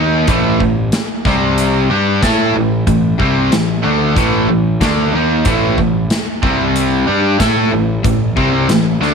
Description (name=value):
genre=classic rock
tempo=93 BPM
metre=4/4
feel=straight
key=unclear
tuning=A4 = 444 Hz
part: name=cranked stack guitar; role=riff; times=0.0-9.1 s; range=A2 to A4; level=-17 LUFS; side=right 13 dB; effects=overdrive
part: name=crunchy overdriven guitar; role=riff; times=0.0-9.1 s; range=A2 to A4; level=-16 LUFS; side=left 11 dB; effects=none
part: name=fuzz picked electric bass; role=bass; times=0.0-9.1 s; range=A1 to A2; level=-19 LUFS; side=equal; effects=overdrive
part: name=big rock drum kit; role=drums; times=0.3-9.1 s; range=hi-hat, kick drum, snare drum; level=-19 LUFS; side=equal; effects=none
room=small room ambience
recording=1960s-style stereo with parts hard left and right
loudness=-12 LUFS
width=side -5 dB against mid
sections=0.0-9.1 A section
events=none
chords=0.0 A5; 1.3 C5; 1.9 Am; 6.4 C5; 7.1 Am